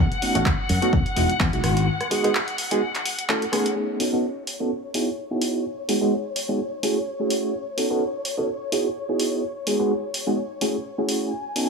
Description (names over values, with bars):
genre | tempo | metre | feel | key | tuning
filtered disco house | 127 BPM | 4/4 | swing 55% on 16ths | F# dorian | A4 = 440 Hz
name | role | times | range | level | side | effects
rich chamber violin section | sustained chords | 0.0-11.7 s | C#5 to G#5 | -30 LUFS | left 3 dB | sidechain pumping, low-pass filter
modern bright fingered electric bass | bass | 0.0-1.9 s | E1 to F#2 | -23 LUFS | left 1 dB | sidechain pumping, low-pass filter
punchy analog drum machine | drums | 0.1-11.7 s | handclaps, hi-hat, rim click | -28 LUFS | equal | sidechain pumping on hats
reed electric piano | accompaniment | 0.2-11.7 s | G#3 to A4 | -24 LUFS | right 1 dB | overdrive, fast tremolo, phaser, sidechain pumping, low-pass filter
electronic kick drum | drums | 0.5-1.5 s | none | -22 LUFS | equal | none
room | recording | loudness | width
light reverb | small room ambience | -21 LUFS | side -4 dB against mid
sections
0.0-3.8 A section; 3.8-11.7 B section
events
break 1.9-3.8; filter sweep 3.8-11.7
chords
0.0 B9; 0.9 Emaj9; 1.9 G#m7; 2.8 F#m9; 3.8 B9; 4.7 Emaj9; 5.7 G#m7; 6.6 F#m9; 7.5 B9; 8.5 Emaj9; 9.4 G#m7; 10.4 F#m9